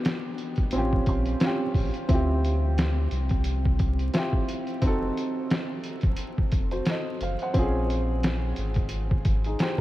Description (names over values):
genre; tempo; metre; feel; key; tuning
lo-fi hip hop; 88 BPM; 4/4; swing 55% on 16ths; unclear; A4 = 440 Hz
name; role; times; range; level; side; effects
dark upright piano; accompaniment; 0.0-9.8 s; B3 to B#5; -29 LUFS; equal; cassette tape, low-pass filter
lo-fi sampler-style drum kit; drums; 0.0-9.8 s; hi-hat, kick drum, snare drum; -27 LUFS; equal; none
warm sub bass; bass; 0.6-9.6 s; F1 to D2; -27 LUFS; equal; none
room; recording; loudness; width
moderate huge ambient reverb, RT60 8.4 s; dreamy mix soaked in reverb, vinyl crackle; -23 LUFS; side -16 dB against mid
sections
0.0-9.8 A section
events
none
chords
0.0 Em7 (rootless); 0.7 A7alt; 2.1 Dm11; 4.8 F7b9; 7.5 Bbm7